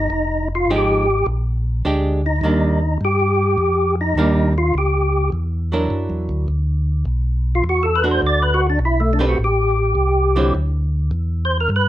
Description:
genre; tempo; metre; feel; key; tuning
soul jazz organ trio; 104 BPM; 4/4; swing 67% on 8ths; unclear; A4 = 440 Hz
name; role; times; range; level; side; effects
percussive tonewheel organ; melody; 0.0-11.9 s; A3 to D5; -18 LUFS; equal; slow rotary speaker, overdrive, chorus vibrato
mellow tonewheel organ; bass; 0.0-11.9 s; F1 to G2; -19 LUFS; equal; slow rotary speaker
archtop guitar, miked and amplified; accompaniment; 0.7-10.5 s; D3 to B4; -21 LUFS; right 2 dB; none
room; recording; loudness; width
moderate club reverb, RT60 0.8 s; none; -16 LUFS; side -13 dB against mid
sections
0.0-11.9 A section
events
tonewheel organ solo 0.0-11.9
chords
0.1 Fm9; 1.3 Bb6; 2.4 Ebmaj7; 4.7 C#dim; 5.9 F#aug7; 7.1 Bm7; 9.4 Am7; 10.5 Dsus2

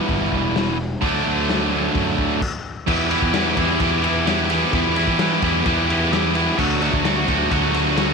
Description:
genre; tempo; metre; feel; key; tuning
classic rock; 129 BPM; 4/4; straight; E minor; A4 = 440 Hz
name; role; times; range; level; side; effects
distorted electric guitar; riff; 0.0-8.1 s; D3 to G4; -19 LUFS; right 1 dB; overdrive
fuzz fingered electric bass; bass; 0.1-8.1 s; E1 to E3; -24 LUFS; right 1 dB; overdrive
raw garage drum kit; drums; 0.1-8.1 s; crash cymbal, hi-hat, kick drum, ride cymbal, snare drum; -24 LUFS; left 3 dB; none
room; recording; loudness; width
light reverb, studio ambience; 1960s-style stereo; -17 LUFS; side -4 dB against mid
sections
0.0-2.9 A section; 2.9-8.1 B section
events
stop 2.4-2.9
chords
0.0 Em; 1.0 D; 2.9 Em; 6.6 D

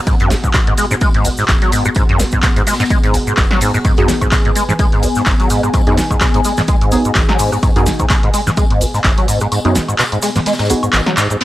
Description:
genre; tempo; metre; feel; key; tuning
acid house; 127 BPM; 4/4; swing 56% on 16ths; G# minor; A4 = 440 Hz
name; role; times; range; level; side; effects
dark analog pad; sustained chords; 0.0-11.4 s; B3 to G#5; -22 LUFS; left 1 dB; chorus, phaser, sidechain pumping
liquid acid bass; riff; 0.1-11.4 s; G#1 to G#3; -16 LUFS; equal; overdrive, ensemble chorus, tape echo
electronic kick drum; drums; 0.1-9.2 s; none; -15 LUFS; equal; studio reverb
punchy analog drum machine; drums; 0.1-11.4 s; congas, crash cymbal, handclaps, hi-hat, rim click, snare drum, woodblock; -19 LUFS; equal; studio reverb
soft brush drum kit; drums; 0.1-11.4 s; hi-hat, snare drum, tambourine; -29 LUFS; equal; sidechain pumping on hats, high-pass filter on hats, low-pass filter on hats, studio reverb, high-pass filter on snare, low-pass filter on snare, sidechain pumping on perc, high-pass filter on perc, low-pass filter on perc, high-pass filter on room, low-pass filter on room
cabasa; percussion; 0.1-11.4 s; none; -26 LUFS; left 1 dB; none
deep mellow chord stab; stabs; 4.0-10.8 s; B3 to G#4; -19 LUFS; right 2 dB; chorus, tape echo
downlifter; sound effects; 11.4 s; none; -14 LUFS; equal; none
room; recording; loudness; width
light reverb, studio reverb; dry, gritty hardware recording; -11 LUFS; side -15 dB against mid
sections
0.0-11.4 A section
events
filter sweep on acid bass 0.0-11.4; kick drops out 9.5-11.4; drum fill 11.2; band accent 11.2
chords
0.0 G#m7

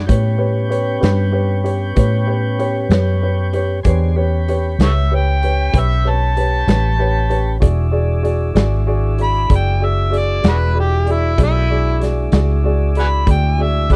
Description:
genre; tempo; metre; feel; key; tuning
slow blues; 64 BPM (dotted quarters); 12/8; straight; unclear; A4 = 440 Hz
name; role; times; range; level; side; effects
overdriven harmonica; melody; 0.0-14.0 s; E4 to B5; -23 LUFS; equal; none
warm upright piano; accompaniment; 0.0-14.0 s; F#4 to D5; -25 LUFS; equal; none
tonewheel organ; sustained chords; 0.0-14.0 s; G#3 to D#5; -29 LUFS; equal; slow rotary speaker
vintage muted fingered electric bass; bass; 0.0-14.0 s; E1 to A2; -18 LUFS; equal; none
raw garage drum kit; drums; 0.1-14.0 s; hi-hat, kick drum, snare drum; -19 LUFS; equal; none
room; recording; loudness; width
small room reverb; dry, close 1970s-style studio recording; -16 LUFS; mono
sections
0.0-14.0 A section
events
none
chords
0.1 A9; 7.6 E9

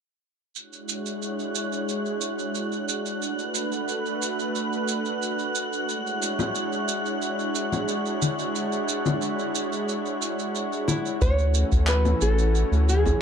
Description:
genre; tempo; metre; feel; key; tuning
sunset chillout; 90 BPM; 4/4; straight; D lydian; A4 = 440 Hz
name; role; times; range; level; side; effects
lush unison pad; sustained chords; 0.5-13.2 s; E3 to C#5; -27 LUFS; right 1 dB; chorus
electronic shaker and handclaps; drums; 0.6-13.2 s; none; -31 LUFS; right 5 dB; none
wind-like tuned noise texture; texture; 0.6-11.2 s; F#6; -34 LUFS; right 1 dB; built-in reverb
congas; percussion; 6.4-13.2 s; none; -28 LUFS; left 4 dB; none
nylon-string guitar; melody; 10.9-13.2 s; E4 to C#5; -26 LUFS; equal; tape echo
round analog bass; bass; 11.2-13.1 s; A1 to D2; -21 LUFS; equal; none
electronic kick drum; drums; 11.2-13.2 s; none; -23 LUFS; equal; none
room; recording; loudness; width
moderate plate reverb, RT60 1.5 s, digital ambience; dark, warm production; -23 LUFS; side -7 dB against mid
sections
0.5-11.2 A section; 11.2-13.2 B section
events
filter sweep on analog synth pad 0.5-11.2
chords
0.5 Dmaj9#11; 3.2 Bm7; 5.9 Dmaj9#11; 11.2 Dmaj9

